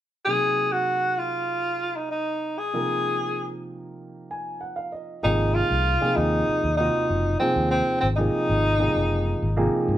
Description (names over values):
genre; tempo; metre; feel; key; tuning
jazz; 97 BPM; 4/4; straight; Ab mixolydian; A4 = 438 Hz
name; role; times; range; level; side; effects
warm tenor saxophone; melody; 0.3-9.8 s; C4 to Ab4; -23 LUFS; equal; none
dark grand piano; accompaniment; 0.3-10.0 s; C3 to Ab5; -27 LUFS; right 1 dB; none
fretless electric bass; bass; 5.2-10.0 s; Gb1 to Ab2; -25 LUFS; equal; none
room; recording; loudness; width
moderate large studio reverb, RT60 0.9 s; band playing live in one room; -21 LUFS; side -12 dB against mid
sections
0.3-5.2 A section; 5.2-10.0 B section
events
grand piano fill 4.0-5.2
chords
0.3 Ab7